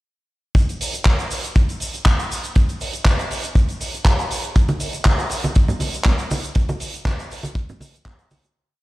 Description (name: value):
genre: nu-disco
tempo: 120 BPM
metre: 4/4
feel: swing 53% on 16ths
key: none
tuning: none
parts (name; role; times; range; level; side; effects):
- kick drum; drums; 0.5-8.2 s; none; -16 LUFS; equal; studio reverb
- damped 70s drum kit; drums; 0.6-8.5 s; handclaps, hi-hat, shaker; -25 LUFS; equal; studio reverb
- maracas, congas and bongos; percussion; 4.6-8.5 s; none; -25 LUFS; right 1 dB; none
room: small room ambience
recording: played on a big sound system in a bare room, large studio reverb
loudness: -18 LUFS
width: side -19 dB against mid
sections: 0.6-8.6 drop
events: drop 0.6-8.6; fade-out 5.9-8.6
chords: none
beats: | 0.56 1.06 1.56 2.06 | 2.56 3.06 3.56 4.06 | 4.56 5.06 5.56 6.06 | 6.56 7.06 7.56 8.06